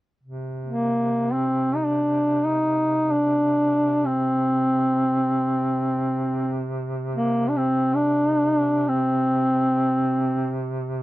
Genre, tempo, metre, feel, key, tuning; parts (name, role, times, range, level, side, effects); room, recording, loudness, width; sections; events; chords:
caucasian folk, Caucasian lament; free time; C minor; A4 = 440 Hz
warm duduk; drone; 0.2-11.0 s; C3; -29 LUFS; right 1 dB
warm duduk; melody; 0.7-10.7 s; Bb3 to Eb4; -20 LUFS; equal
light reverb; dry, close 1970s-style studio recording; -20 LUFS; side -16 dB against mid
0.2-11.0 A section